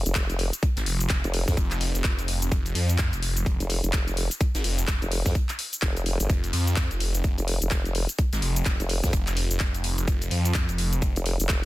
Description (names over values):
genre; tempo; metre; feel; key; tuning
bass house; 127 BPM; 4/4; swing 60% on 16ths; F minor; A4 = 440 Hz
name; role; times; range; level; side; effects
formant-sweep wobble bass; bass; 0.0-11.7 s; F1 to F2; -26 LUFS; equal; chorus, tube saturation, sidechain pumping
garage drum kit; drums; 0.1-11.6 s; cabasa, handclaps, hi-hat; -30 LUFS; left 2 dB; none
electronic kick drum; drums; 0.2-11.6 s; none; -25 LUFS; equal; none
natural country drum kit; drums; 0.2-11.6 s; hi-hat, snare drum; -40 LUFS; right 3 dB; none
phased detuned saw bass; bass; 0.8-11.1 s; F1 to F2; -26 LUFS; equal; phaser, tube saturation, sidechain pumping
room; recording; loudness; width
digital ambience; dense, heavily limited modern master; -23 LUFS; side -17 dB against mid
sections
0.0-11.7 A section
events
none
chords
none